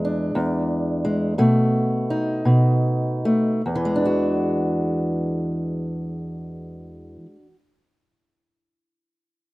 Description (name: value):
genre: blues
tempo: 47-63 BPM (dotted quarters)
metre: 12/8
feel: straight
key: E mixolydian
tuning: A4 = 445 Hz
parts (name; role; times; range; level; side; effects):
- fingerpicked steel-string acoustic guitar; solo; 0.0-7.6 s; E2 to F#4; -20 LUFS; equal; none
room: little or no reverb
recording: recorded outdoors, with no room sound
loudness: -19 LUFS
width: side -20 dB against mid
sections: 0.0-3.7 A section; 3.7-8.7 B section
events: slowing down 0.0-3.7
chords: 0.0 E7; 1.4 B7; 3.7 E9